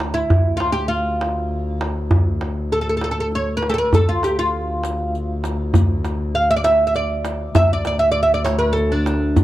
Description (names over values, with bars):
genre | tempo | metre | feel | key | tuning
Persian modal ensemble | 66 BPM (dotted quarters) | 6/8 | straight | D avaz esfahan | A4 = 440 Hz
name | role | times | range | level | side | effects
rich double bass | drone | 0.0-9.4 s | D2 | -24 LUFS | left 1 dB | none
tombak | percussion | 0.0-9.4 s | none | -19 LUFS | equal | none
oud | melody | 0.1-9.4 s | D4 to F5 | -19 LUFS | right 1 dB | none
riq | percussion | 3.9-9.4 s | none | -30 LUFS | left 11 dB | none
room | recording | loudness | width
studio reverb | dry, close 1970s-style studio recording | -17 LUFS | side -14 dB against mid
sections
0.0-9.4 A section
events
none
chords
none